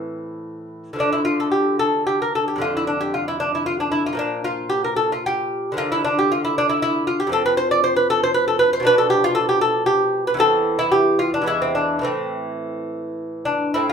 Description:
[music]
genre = classical, baroque-style dance for lute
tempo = 103-118 BPM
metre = 3/4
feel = rubato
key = D minor, A minor from 7.3 s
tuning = A4 = 440 Hz
[part]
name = lute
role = solo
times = 0.0-13.9 s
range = E2 to D5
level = -18 LUFS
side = equal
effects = none
[sound]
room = wet studio reverb, RT60 0.5 s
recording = band playing live in one room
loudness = -18 LUFS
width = side -6 dB against mid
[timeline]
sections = 1.0-13.8 A section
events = none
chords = 0.0 Am; 1.0 Dm; 4.2 Bb5; 5.8 Bb/D; 7.3 F5; 8.9 Bdim; 10.4 Fmaj13/E; 11.5 E; 12.1 Am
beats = 0.42 | 0.99 1.54 2.08 | 2.62 3.15 3.68 | 4.20 4.72 5.24 | 5.77 6.29 6.81 | 7.32 7.83 8.35 | 8.86 9.38 9.89 | 10.42 10.94 11.49 | 12.05 12.63 13.19 | 13.77

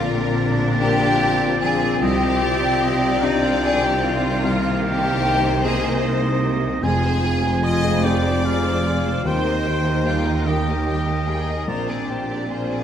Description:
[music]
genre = cinematic, emotional film score for orchestra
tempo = 50 BPM (dotted quarters)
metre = 6/8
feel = rubato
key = Eb major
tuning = A4 = 438 Hz
[part]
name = rich symphonic violin section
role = melody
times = 0.0-12.8 s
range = Ab4 to G5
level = -30 LUFS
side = left 3 dB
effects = none
[part]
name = rich symphonic violin section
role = second line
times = 0.0-12.8 s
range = Eb4 to Eb5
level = -26 LUFS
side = left 2 dB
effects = none
[part]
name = silver concert flute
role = second line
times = 0.0-12.8 s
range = Eb5 to Eb6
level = -28 LUFS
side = left 1 dB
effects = none
[part]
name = warm oboe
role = second line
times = 0.0-12.6 s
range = D5 to Ab5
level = -28 LUFS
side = right 1 dB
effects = none
[part]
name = dark baby grand piano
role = accompaniment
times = 0.0-12.8 s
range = Bb1 to Bb4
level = -28 LUFS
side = left 2 dB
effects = none
[part]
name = rich symphonic viola section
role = accompaniment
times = 0.0-12.8 s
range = Eb3 to Bb4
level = -30 LUFS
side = right 2 dB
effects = none
[part]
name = warm French horn section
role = sustained chords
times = 0.0-12.8 s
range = Bb3 to F4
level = -26 LUFS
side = left 1 dB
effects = none
[part]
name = concert harp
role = arpeggios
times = 0.0-12.8 s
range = Bb2 to D6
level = -30 LUFS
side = left 7 dB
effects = none
[part]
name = rich symphonic cello section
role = bass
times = 0.0-12.8 s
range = Eb2 to C3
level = -26 LUFS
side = right 3 dB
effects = none
[part]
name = rich symphonic double bass section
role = bass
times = 0.0-12.8 s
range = F1 to Eb2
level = -25 LUFS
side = right 2 dB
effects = none
[sound]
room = moderate scoring stage reverb, RT60 2.1 s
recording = none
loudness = -18 LUFS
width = side -9 dB against mid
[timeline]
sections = 0.0-12.8 A section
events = none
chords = 0.0 Bbadd9; 2.0 Cmadd9; 4.4 Abadd9/C; 6.8 Fm; 9.3 Eb; 11.7 Bbadd9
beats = 0.80 | 2.02 3.23 | 4.44 5.63 | 6.83 8.04 | 9.25 10.46 | 11.68

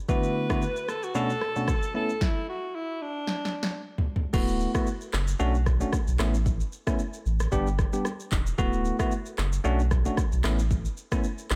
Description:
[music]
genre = afrobeats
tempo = 113 BPM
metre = 4/4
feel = swing 55% on 16ths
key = D major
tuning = A4 = 440 Hz
[part]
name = clear alto saxophone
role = melody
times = 0.1-3.8 s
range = D4 to B4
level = -33 LUFS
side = equal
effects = diffuse ambient delay
[part]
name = bell-like tine electric piano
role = accompaniment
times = 0.1-11.2 s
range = B2 to G4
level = -32 LUFS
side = equal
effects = none
[part]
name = deep house drum kit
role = drums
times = 0.1-11.6 s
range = crash cymbal, handclaps, kick drum, rim click, shaker, snare drum, toms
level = -31 LUFS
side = equal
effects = none
[part]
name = sub bass with octave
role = bass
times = 4.3-11.6 s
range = D1 to B1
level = -28 LUFS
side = equal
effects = none
[sound]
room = light reverb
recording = none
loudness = -27 LUFS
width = mono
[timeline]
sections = 0.0-4.3 A section; 4.3-11.6 B section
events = stop 2.2-4.3; drum fill 3.3-4.3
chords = 0.1 D6; 1.1 Bm7; 1.9 Aadd9; 3.3 N.C.; 4.3 D6; 5.4 Bm7; 6.2 Aadd9; 7.5 G; 8.6 D6; 9.6 Bm7; 10.4 Aadd9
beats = | 0.09 0.62 1.15 1.68 | 2.21 2.74 3.27 3.81 | 4.34 4.87 5.40 5.93 | 6.46 6.99 7.52 8.05 | 8.58 9.11 9.64 10.18 | 10.71 11.24

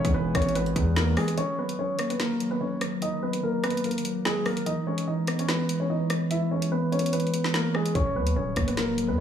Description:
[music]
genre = hip hop, drill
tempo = 146 BPM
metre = 4/4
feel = half-time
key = Eb phrygian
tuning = A4 = 441 Hz
[part]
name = dark concert grand piano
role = melody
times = 0.0-9.2 s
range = G#3 to E5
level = -28 LUFS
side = equal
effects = low-pass filter, tape echo
[part]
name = mellow tine electric piano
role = accompaniment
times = 0.0-9.2 s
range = Eb3 to B3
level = -28 LUFS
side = right 1 dB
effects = medium stereo tremolo, low-pass filter
[part]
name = dark French horn section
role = sustained chords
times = 0.0-1.3 s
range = E3 to G#4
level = -39 LUFS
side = left 3 dB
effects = none
[part]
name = distorted 808-style bass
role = bass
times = 0.0-1.2, 8.0-9.2 s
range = Db1 to Gb2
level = -28 LUFS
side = equal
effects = distortion
[part]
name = drill drum kit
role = drums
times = 0.0-9.1 s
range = hi-hat, kick drum, rim click, snare drum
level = -30 LUFS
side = equal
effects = none
[sound]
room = light reverb, digital ambience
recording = small room ambience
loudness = -24 LUFS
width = side -9 dB against mid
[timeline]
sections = 0.0-1.4 A section; 1.4-9.2 B section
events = break 1.4-8.0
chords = 0.0 Emaj7; 1.4 Ebm; 4.7 Emaj7; 8.0 Ebm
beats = 0.14 0.55 0.96 | 1.38 1.79 2.20 2.61 | 3.02 3.43 3.84 4.25 | 4.66 5.08 5.49 5.90 | 6.31 6.72 7.13 7.54 | 7.95 8.36 8.77 9.18

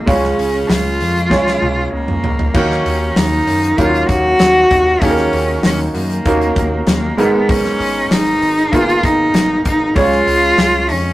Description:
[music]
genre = piano-driven pop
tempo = 97 BPM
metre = 4/4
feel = straight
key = Eb minor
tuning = A4 = 440 Hz
[part]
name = rich cello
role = melody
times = 0.0-11.1 s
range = Bb3 to Gb4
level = -15 LUFS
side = equal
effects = none
[part]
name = clear upright piano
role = accompaniment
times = 0.0-11.1 s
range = Ab2 to Db5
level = -17 LUFS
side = right 2 dB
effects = none
[part]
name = fat analog bass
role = bass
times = 0.1-11.1 s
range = Ab1 to Gb2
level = -22 LUFS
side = equal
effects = none
[part]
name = loose indie drum kit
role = drums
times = 0.1-11.0 s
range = crash cymbal, hi-hat, kick drum, snare drum, toms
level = -19 LUFS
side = left 1 dB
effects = none
[sound]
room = moderate small room reverb, RT60 0.6 s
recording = rough rehearsal-room recording, tube saturation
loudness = -12 LUFS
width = side -16 dB against mid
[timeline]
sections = 0.0-2.5 A section; 2.5-11.1 A section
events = drum fill 1.3-2.5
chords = 0.1 Db; 2.5 Ebm7; 7.2 Abmadd9; 10.0 Db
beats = | 0.07 0.69 1.31 1.93 | 2.55 3.17 3.78 4.40 | 5.02 5.64 6.26 6.88 | 7.49 8.11 8.73 9.35 | 9.97 10.58

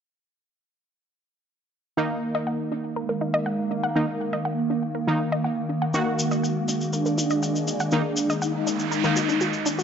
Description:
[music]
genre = melodic techno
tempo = 121 BPM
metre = 4/4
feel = straight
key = Eb harmonic minor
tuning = A4 = 439 Hz
[part]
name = mellow synth brass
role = melody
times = 2.0-9.8 s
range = Ab3 to Eb4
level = -28 LUFS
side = right 2 dB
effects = chorus
[part]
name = sweeping resonant pad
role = sustained chords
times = 2.0-9.8 s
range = Eb3 to F5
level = -29 LUFS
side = left 1 dB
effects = chorus
[part]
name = wide unison pluck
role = arpeggios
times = 2.0-9.8 s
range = D4 to Gb5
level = -30 LUFS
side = left 1 dB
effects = tape echo
[part]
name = synth brass stab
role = stabs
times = 2.0-9.2 s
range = Eb3 to Gb4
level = -28 LUFS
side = equal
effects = chorus, tape echo
[part]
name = swarming drone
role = drone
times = 3.3-9.8 s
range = Eb3 to Bb3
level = -36 LUFS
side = left 1 dB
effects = built-in reverb
[part]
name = tube shaker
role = percussion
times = 5.9-9.8 s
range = none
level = -31 LUFS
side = left 2 dB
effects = none
[part]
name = noise sweep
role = sound effects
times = 8.5-9.8 s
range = none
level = -29 LUFS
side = right 8 dB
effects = none
[sound]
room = light reverb, digital ambience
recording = dry, gritty hardware recording, nothing above 7.7 kHz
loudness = -22 LUFS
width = side -7 dB against mid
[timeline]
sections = 2.0-9.8 A section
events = filter sweep on analog polysynth 2.0-9.8; noise sweep 8.5-9.8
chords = 2.0 Ebm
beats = | 1.97 2.47 2.96 3.46 | 3.96 4.45 4.95 5.44 | 5.94 6.43 6.93 7.43 | 7.92 8.42 8.91 9.41

